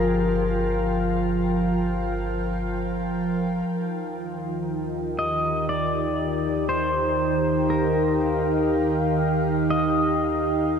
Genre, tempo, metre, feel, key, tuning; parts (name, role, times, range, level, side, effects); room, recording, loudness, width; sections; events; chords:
ambient; 60 BPM; 4/4; straight; A4 = 442 Hz
pedal steel guitar; melody; 0.0-10.8 s; Bb4 to Eb5; -27 LUFS; left 1 dB; tape echo
soft additive organ-like pad; sustained chords; 0.0-10.8 s; Eb3 to G5; -23 LUFS; equal; ensemble chorus, built-in reverb
warm sub bass; bass; 0.0-10.8 s; G1 to Eb2; -32 LUFS; equal
wet cathedral reverb, RT60 7.0 s; in a vast, echoing space, cassette tape; -21 LUFS; side -6 dB against mid
0.0-3.7 A section; 3.7-10.8 B section
fade-in on sub bass 3.7-10.8
0.0 Gm7; 3.7 Eb